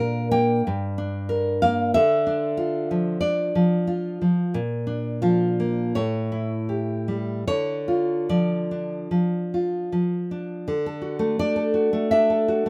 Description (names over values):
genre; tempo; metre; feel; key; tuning
romantic piece for solo classical guitar; 73-98 BPM; 4/4; rubato; D minor; A4 = 443 Hz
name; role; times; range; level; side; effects
nylon-string guitar; solo; 0.0-12.7 s; G2 to G5; -24 LUFS; equal; none
room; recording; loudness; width
light reverb; none; -24 LUFS; mono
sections
0.0-10.7 A section; 10.7-12.7 B section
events
none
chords
0.0 Bb; 0.7 Gm; 2.0 Dm; 4.5 Bb; 6.0 A7; 7.5 Dm; 10.7 D